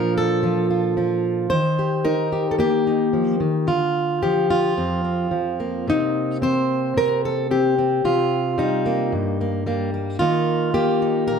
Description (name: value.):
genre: folk, solo fingerstyle acoustic guitar.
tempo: 111 BPM.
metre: 4/4.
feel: straight.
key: unclear.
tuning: A4 = 440 Hz.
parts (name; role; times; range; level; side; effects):
fingerpicked plugged-in steel-string acoustic guitar; solo; 0.0-11.4 s; F2 to C5; -18 LUFS; equal; slapback echo.
room: moderate studio ambience, RT60 0.5 s.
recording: none.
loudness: -18 LUFS.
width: side -6 dB against mid.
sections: 0.0-5.9 A section; 5.9-11.4 B section.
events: none.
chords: 0.0 Bb; 1.5 Eb6; 3.7 Dmadd11; 4.8 Fsus4; 5.9 Cm7; 10.2 Ebadd9.